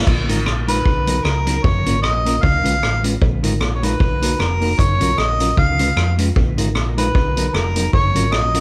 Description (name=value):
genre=ska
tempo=152 BPM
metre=4/4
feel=swing 56% on 8ths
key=unclear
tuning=A4 = 440 Hz
part: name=hollow-body short-scale fingered electric bass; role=bass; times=0.0-8.6 s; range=F1 to F2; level=-22 LUFS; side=equal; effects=none
part: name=street-band drum kit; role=drums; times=0.1-8.6 s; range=crash cymbal, hi-hat, kick drum, rim click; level=-22 LUFS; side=equal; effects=none
part: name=mellow electric guitar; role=accompaniment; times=0.3-8.6 s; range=F#3 to Cb5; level=-26 LUFS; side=equal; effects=tube saturation, tape echo
part: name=mellow harmonica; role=melody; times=0.7-8.6 s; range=A#4 to F5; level=-23 LUFS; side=equal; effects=none
room=moderate large studio reverb, RT60 1.3 s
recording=band playing live in one room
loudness=-17 LUFS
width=mono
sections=0.1-8.6 A section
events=none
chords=0.1 Bb7sus4; 0.9 Bmaj7; 1.6 Gbmaj7; 2.4 Db7; 3.2 Bb7sus4; 4.0 Bmaj7; 4.8 Gbmaj7; 5.6 Db7; 6.4 Bb7sus4; 7.1 Bmaj7; 7.9 Gbmaj7